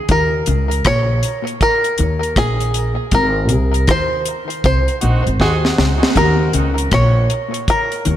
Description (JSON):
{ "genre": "dub reggae", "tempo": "79 BPM", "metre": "4/4", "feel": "swing 64% on 16ths", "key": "Eb dorian", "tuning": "A4 = 441 Hz", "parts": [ { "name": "bluegrass banjo", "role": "melody", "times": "0.0-8.2 s", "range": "Ab4 to Db5", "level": "-18 LUFS", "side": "equal", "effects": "tape echo" }, { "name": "mellow electric guitar", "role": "riff", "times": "0.1-8.2 s", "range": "Ab2 to Eb3", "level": "-24 LUFS", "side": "left 4 dB", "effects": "tape echo" }, { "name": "upright bass", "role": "bass", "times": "0.1-8.2 s", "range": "Ab1 to Eb2", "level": "-17 LUFS", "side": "equal", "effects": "none" }, { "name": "deep reggae drum kit", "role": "drums", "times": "0.1-8.2 s", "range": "hi-hat, kick drum, rim click, snare drum", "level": "-19 LUFS", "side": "equal", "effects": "none" }, { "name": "warm horn section", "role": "second line", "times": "5.0-6.1 s", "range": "C4 to Gb4", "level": "-25 LUFS", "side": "right 2 dB", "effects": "high-pass filter, tape echo" } ], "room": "moderate echo chamber reverb, RT60 2.2 s", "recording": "echo-heavy mix", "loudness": "-13 LUFS", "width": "side -12 dB against mid", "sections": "0.0-8.2 A section", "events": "band accent 3.1-6.2; drum fill 5.4-6.2", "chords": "0.1 Eb5; 3.1 Ab7; 6.2 Eb5" }